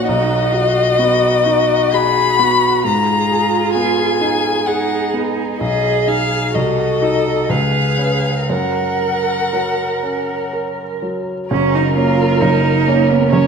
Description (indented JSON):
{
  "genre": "classical, slow romantic movement for piano quartet",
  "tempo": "58-68 BPM",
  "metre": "3/4",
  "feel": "rubato",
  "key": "F# major",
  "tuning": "A4 = 440 Hz",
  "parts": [
    { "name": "rich violin", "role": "melody", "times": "0.0-13.5 s", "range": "A#4 to B5", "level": "-18 LUFS", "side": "left 5 dB", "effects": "none" },
    { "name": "dark violin", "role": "second line", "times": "0.0-13.5 s", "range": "F#4 to C#5", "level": "-23 LUFS", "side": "equal", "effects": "none" },
    { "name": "rich cello", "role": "second line", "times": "0.0-13.5 s", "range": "B3 to A#4", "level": "-20 LUFS", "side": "right 7 dB", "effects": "none" },
    { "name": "clear grand piano", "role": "accompaniment", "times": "0.0-13.5 s", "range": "F#1 to C#5", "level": "-18 LUFS", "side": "right 1 dB", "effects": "none" }
  ],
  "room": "moderate scoring stage reverb, RT60 1.9 s",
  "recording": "none",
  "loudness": "-14 LUFS",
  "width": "side -6 dB against mid",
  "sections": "0.0-11.5 A section; 11.5-13.5 A section",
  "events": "none",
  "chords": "0.1 B; 2.8 G#m; 5.6 G#m/B; 6.5 Cdim7; 7.5 C#7; 8.5 F#"
}